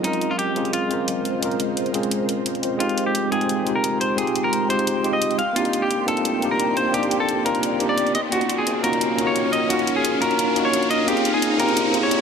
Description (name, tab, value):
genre	liquid drum and bass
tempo	174 BPM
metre	4/4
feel	straight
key	F minor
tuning	A4 = 441 Hz
part	semi-hollow electric guitar	melody	0.0-12.2 s	Eb4 to F5	-23 LUFS	left 1 dB	low-pass filter, dub echo
part	mellow tine electric piano	accompaniment	0.0-12.2 s	Ab3 to G5	-23 LUFS	equal	medium stereo tremolo, dub echo
part	ethereal airy pad	sustained chords	0.0-12.2 s	Ab3 to F6	-29 LUFS	equal	ensemble chorus, built-in reverb, tremolo
part	electronic hi-hat	drums	0.0-12.2 s	none	-28 LUFS	equal	studio reverb
part	dark detuned saw bass	bass	2.8-12.2 s	F1 to Gb2	-35 LUFS	equal	none
part	riser	sound effects	5.3-12.2 s	none	-27 LUFS	left 1 dB	none
room	moderate lush hall reverb, RT60 2.1 s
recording	none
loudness	-19 LUFS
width	side -6 dB against mid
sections	0.0-2.8 A section; 2.8-12.2 B section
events	build-up 2.8-12.2; riser 5.3-12.2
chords	0.0 Bbm9; 2.8 Fm9; 5.4 Cm9; 8.1 Ebm9; 11.1 Bbm9